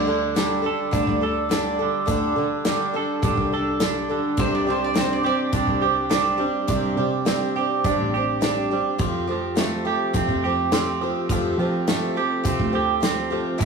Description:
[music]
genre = folk rock and heartland rock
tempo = 104 BPM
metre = 4/4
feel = straight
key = unclear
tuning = A4 = 440 Hz
[part]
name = picked twelve-string acoustic guitar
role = accompaniment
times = 0.0-13.7 s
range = A2 to A4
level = -24 LUFS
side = left 2 dB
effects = none
[part]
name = semi-hollow electric guitar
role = riff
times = 0.0-13.7 s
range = A2 to A4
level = -24 LUFS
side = right 6 dB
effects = spring reverb
[part]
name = fingered electric bass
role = bass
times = 0.0-13.7 s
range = A1 to F3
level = -30 LUFS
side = right 1 dB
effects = none
[part]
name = damped 70s drum kit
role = drums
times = 0.4-13.7 s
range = hi-hat, kick drum, snare drum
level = -25 LUFS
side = equal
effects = none
[part]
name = bowl-back mandolin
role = second line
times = 4.4-6.4, 13.6-13.7 s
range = C5 to D5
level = -27 LUFS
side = right 3 dB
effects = none
[sound]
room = moderate stone room reverb, RT60 1.4 s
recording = rough rehearsal-room recording, tube saturation, studio reverb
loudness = -20 LUFS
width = side -5 dB against mid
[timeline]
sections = 0.0-13.7 A section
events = none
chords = 0.0 Dsus4; 9.0 Fadd9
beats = 0.35 0.93 1.50 | 2.08 2.65 3.23 3.81 | 4.38 4.96 5.53 6.11 | 6.68 7.26 7.84 8.41 | 8.99 9.57 10.14 10.72 | 11.29 11.87 12.45 13.02 | 13.60

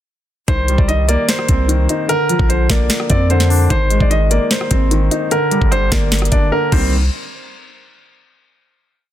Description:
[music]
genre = hip hop, trap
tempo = 149 BPM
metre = 4/4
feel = half-time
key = C minor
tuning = A4 = 441 Hz
[part]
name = dark concert grand piano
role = melody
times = 0.5-6.9 s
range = Bb4 to Eb5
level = -20 LUFS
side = right 1 dB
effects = ping-pong delay
[part]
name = felt-muted upright piano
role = accompaniment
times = 0.5-6.9 s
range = D3 to Eb4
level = -20 LUFS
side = left 1 dB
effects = none
[part]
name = long sustained 808-style bass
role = bass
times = 0.5-7.1 s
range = G1 to F2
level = -16 LUFS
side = equal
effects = none
[part]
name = trap drum kit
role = drums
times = 0.5-6.8 s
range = crash cymbal, hi-hat, kick drum, rim click, snare drum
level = -18 LUFS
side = equal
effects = none
[sound]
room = little or no reverb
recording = dense, heavily limited modern master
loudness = -13 LUFS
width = side -12 dB against mid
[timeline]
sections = 0.5-6.9 hook; 6.9-8.5 final hit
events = silent gap 6.5-6.9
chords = 0.5 Cm7; 2.1 Bbadd9; 3.7 Abadd9; 5.3 Gm; 6.7 Cm7; 6.9 N.C.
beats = | 0.48 0.88 1.29 1.69 | 2.09 2.49 2.90 3.30 | 3.70 4.11 4.51 4.91 | 5.31 5.72 6.12 6.52 | 6.92

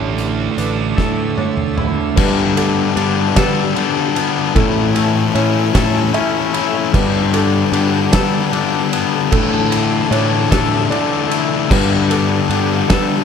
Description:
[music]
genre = post-rock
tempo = 50 BPM (dotted quarters)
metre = 6/8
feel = straight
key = G lydian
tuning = A4 = 438 Hz
[part]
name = soft additive organ-like pad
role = sustained chords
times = 0.0-13.2 s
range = A3 to C#6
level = -27 LUFS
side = left 1 dB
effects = ensemble chorus, built-in reverb
[part]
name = felt-muted upright piano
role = arpeggios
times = 0.0-13.2 s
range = A4 to E5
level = -26 LUFS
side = right 7 dB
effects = digital delay
[part]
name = twangy electric guitar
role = arpeggios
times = 0.0-13.2 s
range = A2 to A4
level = -26 LUFS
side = left 3 dB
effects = warbly pitch drift, digital delay
[part]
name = distorted electric guitar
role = riff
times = 0.0-2.2 s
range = D3 to D4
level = -21 LUFS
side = right 12 dB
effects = distortion
[part]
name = fuzz picked electric bass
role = bass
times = 0.0-13.2 s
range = A1 to G3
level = -19 LUFS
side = right 1 dB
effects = overdrive
[part]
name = oversized low-tuned drum kit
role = drums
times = 0.2-13.1 s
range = crash cymbal, hi-hat, kick drum, ride cymbal, snare drum, toms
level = -20 LUFS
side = right 1 dB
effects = none
[part]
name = thick fuzz guitar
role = riff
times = 2.2-13.2 s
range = G2 to E4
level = -16 LUFS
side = left 11 dB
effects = distortion
[sound]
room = light reverb, studio ambience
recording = none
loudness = -13 LUFS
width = side -7 dB against mid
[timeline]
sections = 0.0-2.2 A section; 2.2-13.2 B section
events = drum fill 1.0-2.2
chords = 0.0 Dsus2/A; 2.2 Gadd9; 4.6 A; 6.9 Gadd9; 9.3 Dsus2/A; 11.7 Gadd9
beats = 0.98 | 2.17 3.37 | 4.56 5.75 | 6.94 8.13 | 9.32 10.51 | 11.71 12.90

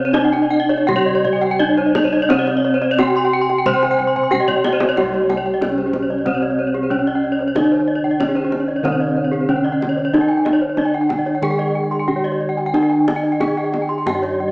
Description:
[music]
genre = Balinese gamelan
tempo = 92 BPM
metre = 4/4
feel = straight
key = C pelog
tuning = A4 = 440 Hz
[part]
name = gamelan-type bronze metallophone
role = melody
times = 0.0-14.5 s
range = C4 to C5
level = -18 LUFS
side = equal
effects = none
[part]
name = gamelan-type bronze metallophone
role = accompaniment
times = 0.0-14.5 s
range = C3 to C4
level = -30 LUFS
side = equal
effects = none
[part]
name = gamelan-type bronze metallophone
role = arpeggios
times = 0.0-14.4 s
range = Ab4-40c to C6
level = -24 LUFS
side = equal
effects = none
[part]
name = gamelan-type bossed gongs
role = bass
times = 0.0-14.5 s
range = C2 to G4-45c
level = -22 LUFS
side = equal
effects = none
[part]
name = gamelan-type bronze metallophone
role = arpeggios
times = 0.1-14.5 s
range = C5 to C6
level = -22 LUFS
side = equal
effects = none
[part]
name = kendang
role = percussion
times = 0.1-14.3 s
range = none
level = -27 LUFS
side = left 1 dB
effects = none
[sound]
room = moderate recital hall reverb, RT60 1.5 s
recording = worn, warbling old tape, cassette tape, warbly pitch drift, small speaker sound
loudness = -15 LUFS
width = side -28 dB against mid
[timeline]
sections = 0.0-5.0 A section; 5.0-14.5 B section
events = drum fill 4.2-5.0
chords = none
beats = 0.15 0.88 1.60 | 2.30 2.99 3.67 4.33 | 4.98 5.63 6.27 6.91 | 7.56 8.20 8.84 9.49 | 10.13 10.78 11.43 12.08 | 12.74 13.40 14.07

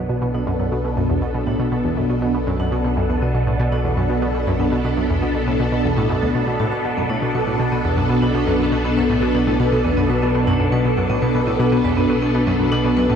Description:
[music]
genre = ambient, sequencer-driven space music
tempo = 120 BPM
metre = 4/4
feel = straight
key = B minor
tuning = A4 = 438 Hz
[part]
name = phased string machine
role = sustained chords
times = 0.0-13.2 s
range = B2 to A4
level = -20 LUFS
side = equal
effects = ensemble chorus, phaser, shimmer reverb
[part]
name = vibraphone with hard mallets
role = arpeggios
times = 0.0-13.2 s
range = A3 to B4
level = -27 LUFS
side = right 1 dB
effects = auto-pan, tape echo
[part]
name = analog pluck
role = riff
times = 0.0-13.2 s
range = D2 to B2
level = -22 LUFS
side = equal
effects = chorus, tape echo
[part]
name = analog drone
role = bass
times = 0.0-13.2 s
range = B1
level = -26 LUFS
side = equal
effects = chorus, tube saturation
[sound]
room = wet huge ambient reverb, RT60 7.0 s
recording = dark, warm production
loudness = -17 LUFS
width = side -7 dB against mid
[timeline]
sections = 0.0-13.2 A section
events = fade-in on vibraphone 0.0-13.2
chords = 0.0 Bm7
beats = 0.22 | 0.72 1.22 1.72 2.22 | 2.72 3.22 3.72 4.22 | 4.72 5.22 5.72 6.22 | 6.72 7.22 7.72 8.22 | 8.72 9.22 9.72 10.22 | 10.72 11.22 11.72 12.22 | 12.72

